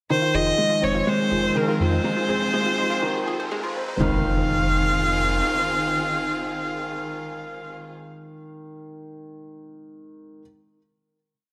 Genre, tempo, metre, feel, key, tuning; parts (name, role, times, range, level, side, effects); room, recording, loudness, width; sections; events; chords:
piano and strings electronica; 123 BPM; 4/4; straight; F minor; A4 = 439 Hz
rich viola; melody; 0.1-7.7 s; Bb4 to F5; -26 LUFS; equal
clear symphonic string section; sustained chords; 0.1-8.0 s; Eb3 to Ab4; -34 LUFS; equal
analog pluck; arpeggios; 0.1-4.2 s; Eb4 to C5; -35 LUFS; equal; chorus, digital delay
warm grand piano; riff; 0.1-10.4 s; Eb3 to C4; -29 LUFS; equal
riser and impact; sound effects; 2.5-7.8 s; -36 LUFS; equal
round analog bass; bass; 0.3-5.4 s; F1 to F2; -29 LUFS; equal; tube saturation
wet recital hall reverb, RT60 1.6 s, studio reverb; high-pass filter; -23 LUFS; mono
0.1-4.0 build; 4.0-7.9 final chord
build-up 0.1-4.0
0.1 Fm7